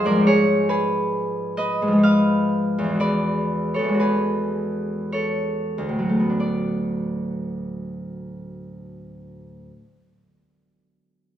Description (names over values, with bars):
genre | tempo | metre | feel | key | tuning
classical, solo harp piece | 44-70 BPM | 3/4 | rubato | D lydian | A4 = 440 Hz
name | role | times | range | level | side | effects
Celtic harp | solo | 0.0-9.8 s | D2 to F5 | -20 LUFS | equal | none
room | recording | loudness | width
wet recital hall reverb, RT60 1.3 s | minimal, uncompressed stereo recording | -19 LUFS | side -10 dB against mid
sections
0.0-6.4 A section; 6.4-10.1 B section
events
slowing down 0.0-6.4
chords
0.3 G#m6; 3.0 E9; 6.4 D6